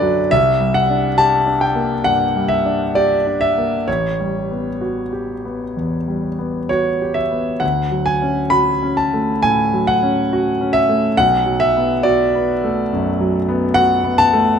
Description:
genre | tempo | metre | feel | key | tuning
classical, impressionist solo piano | 66 BPM | 4/4 | uneven beats, rubato | unclear | A4 = 441 Hz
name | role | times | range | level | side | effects
clear grand piano | solo | 0.0-14.6 s | A1 to B5 | -15 LUFS | equal | none
room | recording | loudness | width
light reverb | none | -15 LUFS | side -7 dB against mid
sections
0.0-14.6 A section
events
none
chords
0.3 Csus2; 3.9 A13; 7.6 Dmaj7; 11.2 Bm7

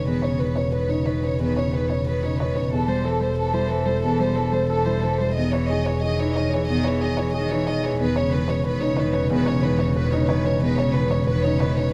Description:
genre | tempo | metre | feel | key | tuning
neoclassical piano and strings | 91 BPM | 4/4 | rubato | unclear | A4 = 440 Hz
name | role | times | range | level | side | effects
warm chamber violin section | melody | 0.0-11.9 s | A4 to D#5 | -31 LUFS | equal | none
warm cello | second line | 0.0-11.9 s | C#3 to G3 | -31 LUFS | equal | none
dark concert grand piano | accompaniment | 0.0-11.9 s | E2 to C#5 | -26 LUFS | equal | none
warm double bass | bass | 0.0-11.9 s | E1 | -27 LUFS | equal | none
room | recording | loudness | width
light reverb | band playing live in one room | -22 LUFS | mono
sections
0.0-11.9 A section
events
none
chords
0.0 Badd9/E; 2.7 C6/E; 5.4 C#madd9/E; 8.0 Badd9/E

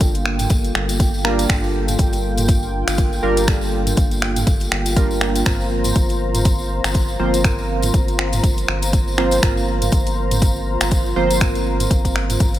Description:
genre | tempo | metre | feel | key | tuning
afro house | 121 BPM | 4/4 | swing 57% on 16ths | unclear | A4 = 440 Hz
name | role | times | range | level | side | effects
warm analog pad | sustained chords | 0.0-12.6 s | Bb3 to Bb5 | -25 LUFS | left 1 dB | chorus, sidechain pumping
warm analog keys | stabs | 0.0-12.6 s | F3 to C5 | -23 LUFS | right 2 dB | chorus, sidechain pumping, tape echo
round analog bass | bass | 0.0-12.6 s | G1 | -23 LUFS | equal | sidechain pumping
afro-pop drum kit | drums | 0.0-12.6 s | finger snaps, hi-hat, toms | -23 LUFS | equal | none
electronic kick drum | drums | 0.0-12.5 s | none | -18 LUFS | equal | overdrive
tambourine | percussion | 0.0-12.6 s | none | -30 LUFS | left 2 dB | none
room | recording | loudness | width
little or no reverb | none | -16 LUFS | side -13 dB against mid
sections
0.0-12.6 A section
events
none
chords
0.0 Gm7; 5.5 Fsus4/G

